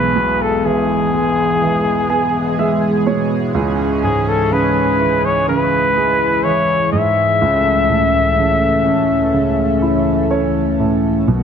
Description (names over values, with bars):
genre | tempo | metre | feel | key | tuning
pop | 62 BPM | 4/4 | straight | unclear | A4 = 440 Hz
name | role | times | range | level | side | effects
clear flugelhorn | melody | 0.0-10.3 s | G#4 to E5 | -17 LUFS | left 2 dB | tape echo
warm grand piano | accompaniment | 0.0-11.4 s | B1 to G#5 | -19 LUFS | right 4 dB | none
chorused pulse-width pad | sustained chords | 0.0-11.4 s | C#2 to A4 | -18 LUFS | left 2 dB | none
vintage muted fingered electric bass | bass | 11.3-11.4 s | B1 | -15 LUFS | equal | none
room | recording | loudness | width
moderate concert hall reverb, RT60 1.7 s, studio reverb | none | -13 LUFS | side -7 dB against mid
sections
0.0-11.3 A section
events
grand piano fill 1.6-3.5, 9.8-11.3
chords
0.0 E; 3.5 C#m; 7.4 A/C#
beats
0.64 1.61 2.58 | 3.55 4.51 5.48 6.45 | 7.42 8.38 9.35 10.32 | 11.29